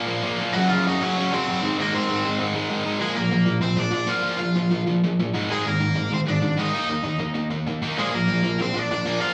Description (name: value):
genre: punk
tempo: 194 BPM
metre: 4/4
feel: straight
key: Bb mixolydian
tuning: A4 = 438 Hz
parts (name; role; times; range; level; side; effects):
- distorted electric guitar; riff; 0.0-9.3 s; Gb2 to Eb4; -25 LUFS; equal; overdrive
- overdriven semi-hollow guitar; melody; 0.5-9.3 s; F3 to F5; -27 LUFS; equal; none
room: moderate studio reverb, RT60 0.6 s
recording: small room reverb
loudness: -23 LUFS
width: mono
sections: 0.0-3.0 A section; 3.0-9.3 B section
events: none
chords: 0.0 Bb5; 0.5 Gb5; 1.6 Ab; 3.0 Bb; 5.3 Ab5; 6.7 Eb5; 8.0 Bb